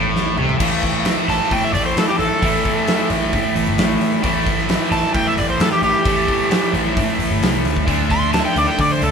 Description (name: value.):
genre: blues rock power trio and southern rock.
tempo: 132 BPM.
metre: 4/4.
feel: straight.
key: A minor.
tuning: A4 = 440 Hz.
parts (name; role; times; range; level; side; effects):
overdriven electric guitar; riff; 0.0-9.1 s; A2 to D4; -19 LUFS; equal; spring reverb.
vintage muted picked electric bass; bass; 0.0-9.1 s; G1 to D3; -23 LUFS; equal; none.
big rock drum kit; drums; 0.2-9.1 s; crash cymbal, hi-hat, kick drum, snare drum, toms; -21 LUFS; equal; none.
overdriven slide guitar; melody; 1.3-9.1 s; G4 to C6; -19 LUFS; right 1 dB; none.
room: light reverb.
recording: band playing live in one room.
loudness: -15 LUFS.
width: side -6 dB against mid.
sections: 0.6-9.1 A section.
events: drum fill 0.1-0.6; electric slide guitar solo 0.6-9.1.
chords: 0.0 Am; 0.6 A5; 7.9 D5.